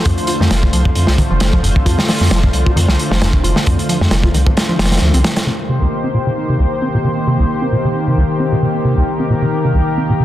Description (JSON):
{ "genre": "breakbeat, breaks", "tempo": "133 BPM", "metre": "4/4", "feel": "swing 55% on 16ths", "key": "C dorian", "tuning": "A4 = 440 Hz", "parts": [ { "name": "lush unison pad", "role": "sustained chords", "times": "0.0-10.2 s", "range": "D3 to C5", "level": "-18 LUFS", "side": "left 1 dB", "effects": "chorus, vintage 12-bit sampler grit, sidechain pumping" }, { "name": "deep acid bass", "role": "riff", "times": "0.0-10.2 s", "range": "C2 to F4", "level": "-18 LUFS", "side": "equal", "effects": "tape echo" }, { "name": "saturated sub bass", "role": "bass", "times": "0.1-5.2 s", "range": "F1 to F2", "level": "-15 LUFS", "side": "equal", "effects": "none" }, { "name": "crunchy breakbeat drum kit", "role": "drums", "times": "0.1-5.5 s", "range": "hi-hat, kick drum, snare drum", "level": "-15 LUFS", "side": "equal", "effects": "none" } ], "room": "moderate plate reverb, RT60 1.6 s, studio reverb", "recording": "dense, heavily limited modern master", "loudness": "-12 LUFS", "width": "side -13 dB against mid", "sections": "0.0-5.5 A section; 5.5-10.2 B section", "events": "kick drops out 4.6-5.5", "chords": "0.0 F6; 5.5 Cm7", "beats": "| 0.05 0.50 0.95 1.41 | 1.86 2.31 2.76 3.21 | 3.66 4.11 4.56 5.01 | 5.47 5.92 6.37 6.82 | 7.27 7.72 8.17 8.62 | 9.07 9.53 9.98" }